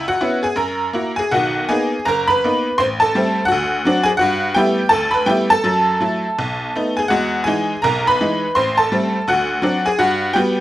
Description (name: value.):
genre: solo jazz.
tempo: 166 BPM.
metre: 4/4.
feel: swing 64% on 8ths, rubato.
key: unclear.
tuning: A4 = 440 Hz.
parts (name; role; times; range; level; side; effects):
tack piano; solo; 0.0-10.6 s; F#1 to C6; -15 LUFS; equal; none.
room: moderate club reverb, RT60 0.5 s.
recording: none.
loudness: -15 LUFS.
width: side -14 dB against mid.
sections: 0.0-1.3 A section; 1.3-10.6 B section.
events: none.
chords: 0.0 C#m7; 0.5 F#7; 1.3 Bmaj7; 2.8 Am7; 3.5 D7; 4.2 G69; 5.6 F#m7; 6.4 B7; 7.1 Emaj7; 8.6 Am7; 9.3 D7; 10.0 Gmaj7.